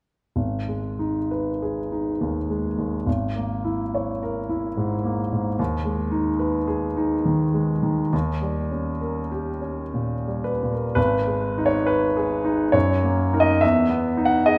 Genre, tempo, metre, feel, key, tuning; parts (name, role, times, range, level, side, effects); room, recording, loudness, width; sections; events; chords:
classical, romantic character piece for solo piano; 56-74 BPM; 3/4; rubato; G# minor; A4 = 440 Hz
clear grand piano; solo; 0.4-14.6 s; G#1 to F#5; -23 LUFS; equal
wet recital hall reverb, RT60 1.6 s; -24 LUFS; mono
0.4-11.0 A section; 11.0-14.6 B section
0.4 G#m; 3.1 A#m7b5/G#; 5.6 G#m/D#; 8.1 D#7; 11.0 G#m; 12.7 D#m/F#; 13.6 Emaj7